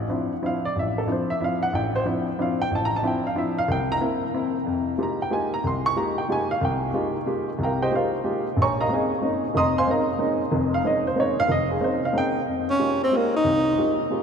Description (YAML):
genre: jazz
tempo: 184 BPM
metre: 3/4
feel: swing 64% on 8ths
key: D minor, F minor from 4.7 s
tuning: A4 = 440 Hz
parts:
  - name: warm baby grand piano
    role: accompaniment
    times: 0.0-14.2 s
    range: F1 to Eb6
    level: -22 LUFS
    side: equal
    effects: none
  - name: breathy tenor saxophone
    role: melody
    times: 12.7-14.0 s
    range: Bb3 to Eb4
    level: -20 LUFS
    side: equal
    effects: none
room: wet cathedral reverb, RT60 6.7 s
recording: in a vast, echoing space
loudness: -21 LUFS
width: side -6 dB against mid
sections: 0.0-4.7 A section; 4.7-12.5 A section; 12.5-14.2 B section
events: none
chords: 0.0 Dm9; 3.7 C7; 4.7 Fm11; 8.6 Bbm11; 12.5 Fm11